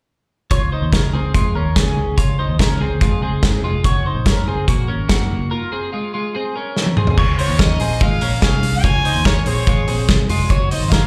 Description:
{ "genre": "jangly indie pop", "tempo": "144 BPM", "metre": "4/4", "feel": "straight", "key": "Db major", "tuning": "A4 = 443 Hz", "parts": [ { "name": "twelve-string electric guitar", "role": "arpeggios", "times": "0.5-11.1 s", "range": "Ab3 to Db5", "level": "-25 LUFS", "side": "equal", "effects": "subtle chorus, slapback echo, analog delay" }, { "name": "vintage muted picked electric bass", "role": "bass", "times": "0.5-11.1 s", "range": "F1 to Db3", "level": "-22 LUFS", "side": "equal", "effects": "none" }, { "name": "loose indie drum kit", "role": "drums", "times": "0.5-11.0 s", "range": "crash cymbal, hi-hat, kick drum, snare drum, toms", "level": "-20 LUFS", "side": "equal", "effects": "none" }, { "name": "rich violin", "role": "melody", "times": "7.4-11.1 s", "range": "Db5 to Ab5", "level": "-25 LUFS", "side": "equal", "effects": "slapback echo" } ], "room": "light reverb, studio ambience", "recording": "live gig heard through the venue's PA, club reverb", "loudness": "-17 LUFS", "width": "mono", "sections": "0.5-7.2 A section; 7.2-11.1 B section", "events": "break 5.5-7.2; drum fill 6.8-7.2", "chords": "0.5 Dbadd9; 3.8 Gb; 5.5 Fm; 7.2 Dbadd9; 10.5 Gb" }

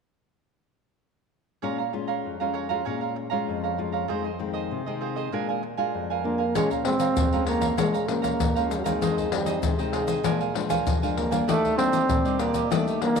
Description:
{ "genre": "samba and choro", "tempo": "97 BPM", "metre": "4/4", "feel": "straight", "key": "Bb minor", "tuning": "A4 = 443 Hz", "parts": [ { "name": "cavaquinho", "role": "accompaniment", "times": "1.6-13.2 s", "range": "D4 to Bb5", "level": "-30 LUFS", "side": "right 12 dB", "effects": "none" }, { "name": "nylon-string guitar", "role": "accompaniment", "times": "1.6-13.2 s", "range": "F2 to F4", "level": "-30 LUFS", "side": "left 7 dB", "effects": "none" }, { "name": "warm trombone", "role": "melody", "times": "6.2-13.2 s", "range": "Gb3 to C4", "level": "-25 LUFS", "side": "right 2 dB", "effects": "none" }, { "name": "egg shaker, surdo and pandeiro", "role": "percussion", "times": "6.6-13.2 s", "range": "none", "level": "-27 LUFS", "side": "left 5 dB", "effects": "none" } ], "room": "wet plate reverb, RT60 2.9 s", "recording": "1960s-style stereo with parts hard left and right", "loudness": "-23 LUFS", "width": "side -6 dB against mid", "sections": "1.6-6.6 A section; 6.6-13.2 B section", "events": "none", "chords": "1.6 Bbm7; 4.1 Fm7; 5.3 Bb7; 6.6 Bbm7; 9.0 Fm7; 10.2 Bb7; 11.5 Ebmaj7" }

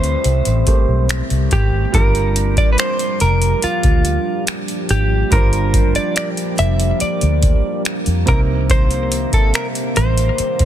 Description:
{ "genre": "contemporary R&B", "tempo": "71 BPM", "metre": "4/4", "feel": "straight", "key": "unclear", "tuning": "A4 = 441 Hz", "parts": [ { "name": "direct-recorded clean electric guitar", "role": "melody", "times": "0.0-10.7 s", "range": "F4 to E5", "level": "-21 LUFS", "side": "equal", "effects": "ping-pong delay" }, { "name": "felt-muted upright piano", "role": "accompaniment", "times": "0.0-10.7 s", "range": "A2 to C5", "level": "-25 LUFS", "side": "right 7 dB", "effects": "none" }, { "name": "deep dark ambient pad", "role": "sustained chords", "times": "0.0-10.7 s", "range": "Eb3 to G4", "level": "-24 LUFS", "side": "equal", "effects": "chorus, built-in reverb, sidechain pumping" }, { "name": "vintage muted fingered electric bass", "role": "bass", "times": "0.0-10.7 s", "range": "F1 to F2", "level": "-17 LUFS", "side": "equal", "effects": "none" }, { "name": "booming analog drum machine", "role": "drums", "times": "0.0-10.7 s", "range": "finger snaps, hi-hat, kick drum", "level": "-17 LUFS", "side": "equal", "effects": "soft clipping on snare" } ], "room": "little or no reverb", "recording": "dense, heavily limited modern master", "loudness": "-14 LUFS", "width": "side -11 dB against mid", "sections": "0.0-10.7 A section", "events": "none", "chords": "0.0 Am7; 1.9 Gm7; 8.3 Cm7" }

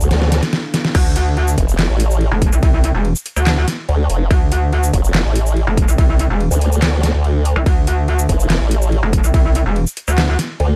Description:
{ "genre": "heavy wobble dubstep", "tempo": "143 BPM", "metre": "4/4", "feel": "half-time", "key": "D minor", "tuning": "A4 = 439 Hz", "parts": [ { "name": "lush unison pad", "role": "sustained chords", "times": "0.0-0.9 s", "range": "D4 to F5", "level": "-36 LUFS", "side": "equal", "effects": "none" }, { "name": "formant-sweep wobble bass", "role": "bass", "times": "0.0-10.8 s", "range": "F1 to D2", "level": "-17 LUFS", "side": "equal", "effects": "chorus, overdrive" }, { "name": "dubstep drum kit", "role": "drums", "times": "0.0-10.7 s", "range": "crash cymbal, handclaps, hi-hat, ride cymbal, shaker, snare drum", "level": "-23 LUFS", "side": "equal", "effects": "overdrive" }, { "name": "metallic wobble bass", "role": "bass", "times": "0.9-10.4 s", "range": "E1 to D2", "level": "-17 LUFS", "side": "equal", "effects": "chorus, overdrive" }, { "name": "electronic kick drum", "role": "drums", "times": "0.9-9.4 s", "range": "none", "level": "-18 LUFS", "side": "equal", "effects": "overdrive" } ], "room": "little or no reverb", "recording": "none", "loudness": "-16 LUFS", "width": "mono", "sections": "0.9-10.8 A section", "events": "drum fill 0.1-0.9; break 0.5-0.9; drop 0.9-10.8", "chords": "0.0 D5" }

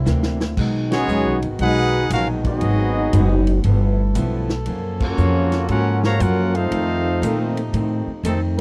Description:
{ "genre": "jazz, big band swing", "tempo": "117 BPM", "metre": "4/4", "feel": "swing 67% on 8ths", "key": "unclear", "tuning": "A4 = 441 Hz", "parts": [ { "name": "brilliant trombone section", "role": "sustained chords", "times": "0.0-8.6 s", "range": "C3 to A4", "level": "-33 LUFS", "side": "equal", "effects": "none" }, { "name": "upright bass", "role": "bass", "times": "0.0-8.6 s", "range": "F#1 to A#2", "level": "-22 LUFS", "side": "equal", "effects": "none" }, { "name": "picked steel-string acoustic guitar", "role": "accompaniment", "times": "0.1-8.6 s", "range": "F2 to E4", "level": "-28 LUFS", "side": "equal", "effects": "none" }, { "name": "vintage drum kit", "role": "drums", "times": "0.1-8.6 s", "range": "crash cymbal, hi-hat, kick drum, ride cymbal, snare drum", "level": "-29 LUFS", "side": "equal", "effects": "none" }, { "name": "clear trumpet section", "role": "melody", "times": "0.9-8.4 s", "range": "A#3 to A#5", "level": "-26 LUFS", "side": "equal", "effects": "none" }, { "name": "warm trombone section", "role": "second line", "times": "0.9-8.6 s", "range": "C3 to A#4", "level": "-26 LUFS", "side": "equal", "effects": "none" } ], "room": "little or no reverb", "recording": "dry, close 1970s-style studio recording", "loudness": "-20 LUFS", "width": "mono", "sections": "0.0-8.6 A section", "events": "drum fill 0.1-0.6; band accent 0.8, 4.9", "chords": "0.0 C9; 0.6 B6; 2.6 G#m7; 3.6 G13; 4.7 F#maj7; 6.7 F7" }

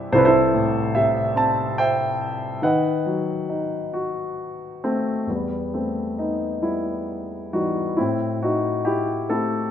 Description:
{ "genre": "classical, lyrical solo piano", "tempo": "44-48 BPM (dotted quarters)", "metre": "6/8", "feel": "rubato", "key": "E harmonic minor", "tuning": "A4 = 441 Hz", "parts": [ { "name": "warm concert grand piano", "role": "solo", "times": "0.0-9.7 s", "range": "C2 to A5", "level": "-20 LUFS", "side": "equal", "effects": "none" } ], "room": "moderate concert hall reverb, RT60 1.9 s", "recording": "minimal, uncompressed stereo recording", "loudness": "-20 LUFS", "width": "side -9 dB against mid", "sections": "0.0-5.3 A section; 5.3-9.7 B section", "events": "none", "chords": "0.1 Am/C; 2.6 B; 5.3 Em; 8.0 Am" }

